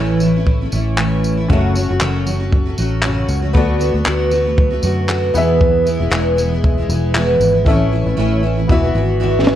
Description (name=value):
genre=acoustic pop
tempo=117 BPM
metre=4/4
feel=swing 55% on 16ths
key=unclear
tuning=A4 = 440 Hz
part: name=picked steel-string acoustic guitar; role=accompaniment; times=0.0-9.6 s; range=E2 to F#4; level=-17 LUFS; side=right 1 dB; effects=double-tracked left and right
part: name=vintage muted fingered electric bass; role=bass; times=0.0-9.6 s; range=E1 to F#2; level=-18 LUFS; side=equal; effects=none
part: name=compact cocktail drum kit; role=drums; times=0.2-9.6 s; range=handclaps, kick drum, snare drum, tambourine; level=-18 LUFS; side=equal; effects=none
part: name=warm upright piano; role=accompaniment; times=1.5-9.6 s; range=B3 to F#5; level=-24 LUFS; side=left 4 dB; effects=none
room=studio reverb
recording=worn, warbling old tape, cassette tape, warbly pitch drift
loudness=-13 LUFS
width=side -11 dB against mid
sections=0.0-9.6 A section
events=drum fill 7.7-9.6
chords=0.0 A; 1.5 F#m; 3.6 D6; 5.3 E; 7.7 A; 8.7 Esus2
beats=0.47 0.98 | 1.50 2.01 2.52 3.04 | 3.55 4.07 4.58 5.09 | 5.61 6.12 6.63 7.15 | 7.66 8.17 8.69 9.20